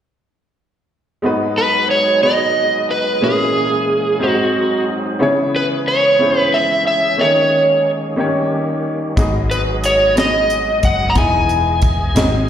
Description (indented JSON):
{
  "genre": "slow gospel",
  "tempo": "60 BPM (dotted quarters)",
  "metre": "6/8",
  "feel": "straight",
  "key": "G# minor",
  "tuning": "A4 = 442 Hz",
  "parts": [
    { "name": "clear baby grand piano", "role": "accompaniment", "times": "1.2-12.5 s", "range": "G#2 to D#5", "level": "-19 LUFS", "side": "left 1 dB", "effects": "plate reverb, slapback echo" },
    { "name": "bright tonewheel organ", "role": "sustained chords", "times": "1.2-12.5 s", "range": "D#3 to D#5", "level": "-25 LUFS", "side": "right 1 dB", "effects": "slow rotary speaker, chorus vibrato, plate reverb" },
    { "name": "overdriven slide guitar", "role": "melody", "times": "1.6-12.5 s", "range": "G#4 to A#5", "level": "-15 LUFS", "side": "right 1 dB", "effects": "plate reverb, slapback echo" },
    { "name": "hollow-body short-scale fingered electric bass", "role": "bass", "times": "9.2-12.5 s", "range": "E1 to G#1", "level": "-20 LUFS", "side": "equal", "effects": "none" },
    { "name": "tight funk drum kit", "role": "drums", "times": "9.2-12.3 s", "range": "hi-hat, kick drum, snare drum", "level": "-18 LUFS", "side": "equal", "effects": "none" }
  ],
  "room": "moderate club reverb, RT60 0.7 s",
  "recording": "live gig heard through the venue's PA, recital hall reverb",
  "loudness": "-13 LUFS",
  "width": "side -9 dB against mid",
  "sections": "1.2-12.5 A section",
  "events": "none",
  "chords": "1.2 G#m7; 3.2 A#m7b5; 4.2 G#7; 5.2 C#m7; 7.2 D#7sus4; 8.2 D#7; 9.2 G#m7; 11.2 Emaj7",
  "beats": "| 1.25 2.23 | 3.23 4.22 | 5.21 6.20 | 7.19 8.18 | 9.18 10.17 | 11.16 12.15"
}